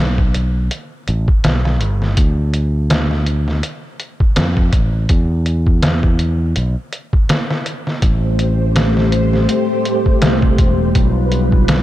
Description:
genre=trip hop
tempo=82 BPM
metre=4/4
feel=swing 56% on 16ths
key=A minor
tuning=A4 = 439 Hz
part: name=fingered electric bass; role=bass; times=0.0-11.8 s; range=E1 to F2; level=-16 LUFS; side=equal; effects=tube saturation
part: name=trip hop sampler-style drum kit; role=drums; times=0.2-11.8 s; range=hi-hat, kick drum, snare drum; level=-16 LUFS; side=equal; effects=none
part: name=string machine, cellos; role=sustained chords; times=8.0-11.8 s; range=G3 to C5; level=-17 LUFS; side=left 1 dB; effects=ensemble chorus
room=light reverb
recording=none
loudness=-13 LUFS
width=side -14 dB against mid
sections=0.0-11.8 A section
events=none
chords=0.0 G/B; 2.2 N.C.; 5.1 E5; 8.0 Am7; 11.0 G7/B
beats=0.71 1.44 | 2.17 2.90 3.63 4.37 | 5.10 5.83 6.56 7.29 | 8.02 8.76 9.49 10.22 | 10.95 11.68

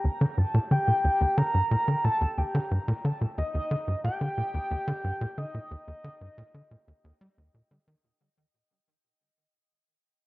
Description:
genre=ambient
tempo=90 BPM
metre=4/4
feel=straight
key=Eb lydian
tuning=A4 = 440 Hz
part: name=pulse-width lead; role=melody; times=0.0-7.7 s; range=Eb5 to Bb5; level=-30 LUFS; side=equal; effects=chorus, tape echo
part: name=tight sequencer bass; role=riff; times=0.0-8.0 s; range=Eb2 to G3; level=-26 LUFS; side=equal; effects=cassette tape, tape echo
room=moderate spring reverb, RT60 1.2 s, digital ambience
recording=home recording on cassette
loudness=-25 LUFS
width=side -19 dB against mid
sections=0.0-8.0 A section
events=filter sweep on analog synth bass 0.0-8.0; fade-out 0.9-8.0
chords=0.0 Eb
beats=| 0.04 0.71 1.38 2.04 | 2.71 3.38 4.04 4.71 | 5.38 6.04 6.71 7.38

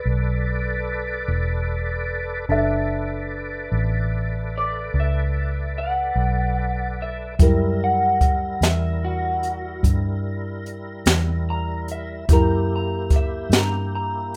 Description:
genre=slow blues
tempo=49 BPM (dotted quarters)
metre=12/8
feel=straight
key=B minor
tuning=A4 = 440 Hz
part: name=electric guitar through a small old amp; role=melody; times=0.0-14.3 s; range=F#4 to A#5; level=-28 LUFS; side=equal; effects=lush chorus
part: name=dark grand piano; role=accompaniment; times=0.0-14.4 s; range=G3 to C#6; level=-28 LUFS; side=equal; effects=none
part: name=tonewheel organ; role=sustained chords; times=0.0-14.4 s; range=G3 to D5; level=-33 LUFS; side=equal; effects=slow rotary speaker, overdrive, chorus vibrato
part: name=vintage muted fingered electric bass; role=bass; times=0.1-14.4 s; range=E1 to G2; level=-26 LUFS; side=equal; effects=none
part: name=jazz brush drum kit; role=drums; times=7.4-14.4 s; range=hi-hat, kick drum, snare drum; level=-21 LUFS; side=equal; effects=none
room=light reverb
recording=rough home demo mix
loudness=-22 LUFS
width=mono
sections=0.0-14.4 A section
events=none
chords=0.0 Bm9; 7.4 F#7b9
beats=0.06 1.28 | 2.51 3.73 4.95 6.17 | 7.40 8.62 9.84 11.07 | 12.29 13.52

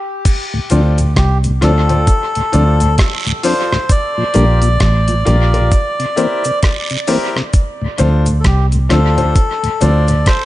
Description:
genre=roots reggae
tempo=66 BPM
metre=4/4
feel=swing 61% on 16ths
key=D minor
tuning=A4 = 440 Hz
part: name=dusty soul sampler-style drum kit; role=drums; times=0.3-10.4 s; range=crash cymbal, hi-hat, kick drum, rim click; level=-16 LUFS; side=equal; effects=dub echo
part: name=cabasa and guiro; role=percussion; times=0.3-10.4 s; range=none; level=-26 LUFS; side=right 4 dB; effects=none
part: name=mellow tonewheel organ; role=accompaniment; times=0.5-10.2 s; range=D2 to D4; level=-21 LUFS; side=left 2 dB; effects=slow rotary speaker
part: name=bright baby grand piano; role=stabs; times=0.7-10.2 s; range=D4 to D5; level=-21 LUFS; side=left 3 dB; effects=none
part: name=vintage muted fingered electric bass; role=bass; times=0.7-10.2 s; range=A1 to D2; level=-12 LUFS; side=equal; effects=none
part: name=melodica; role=melody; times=1.2-10.4 s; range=G4 to D5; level=-19 LUFS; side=equal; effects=tape echo
room=studio reverb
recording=echo-heavy mix, nothing above 10.3 kHz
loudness=-11 LUFS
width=side -15 dB against mid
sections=0.3-10.4 A section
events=break 0.0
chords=0.3 Dm7; 3.9 Bb6; 5.7 C7; 7.5 Dm7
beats=| 0.26 1.17 2.08 2.99 | 3.90 4.81 5.72 6.63 | 7.54 8.45 9.35 10.26

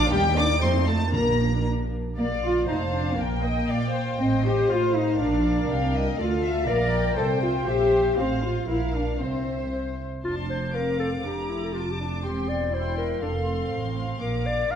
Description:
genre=quick classical-period movement for symphony orchestra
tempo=119 BPM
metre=2/4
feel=straight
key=Bb major, F major from 6.2 s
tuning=A4 = 445 Hz
part: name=warm studio violin section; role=melody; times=0.0-14.8 s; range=D5 to D6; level=-33 LUFS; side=left 3 dB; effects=none
part: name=dark studio violin section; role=second line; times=0.0-14.8 s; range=G4 to Bb5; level=-32 LUFS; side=left 2 dB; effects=none
part: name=rich studio viola section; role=accompaniment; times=0.0-14.8 s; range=A3 to Eb5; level=-32 LUFS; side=equal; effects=none
part: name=warm studio cello section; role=bass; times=0.0-14.8 s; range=E2 to Bb4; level=-29 LUFS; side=right 1 dB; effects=none
part: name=warm symphonic double bass section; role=bass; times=0.0-14.8 s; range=E1 to Bb2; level=-27 LUFS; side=right 2 dB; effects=none
part: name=timpani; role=percussion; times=1.1-1.9 s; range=Bb2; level=-35 LUFS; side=right 1 dB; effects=none
part: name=dark French horn section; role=sustained chords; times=2.2-9.7 s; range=Bb3 to Bb4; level=-27 LUFS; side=left 3 dB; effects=none
part: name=warm clarinet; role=second line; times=10.2-14.8 s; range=F4 to F5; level=-29 LUFS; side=left 2 dB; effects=none
room=moderate recital hall reverb, RT60 1.7 s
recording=dark, warm production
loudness=-22 LUFS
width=side -8 dB against mid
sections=0.0-2.2 A section; 2.2-10.2 B section; 10.2-14.8 C section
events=none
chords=0.1 Eb; 0.6 F7; 1.1 Bb; 3.2 Eb/Bb; 4.2 F7/A; 5.2 Bb; 6.2 Dm; 6.7 Bb; 7.2 C; 7.7 C7/Bb; 8.2 F/A; 8.7 Bb; 9.2 C; 10.2 F; 11.2 Gm13/F; 12.2 C/E; 13.2 F; 14.2 Bb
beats=| 0.11 0.62 | 1.13 1.65 | 2.17 2.68 | 3.19 3.69 | 4.20 4.70 | 5.20 5.69 | 6.18 6.67 | 7.17 7.67 | 8.18 8.69 | 9.20 9.73 | 10.24 10.74 | 11.24 11.75 | 12.24 12.73 | 13.23 13.72 | 14.21 14.71

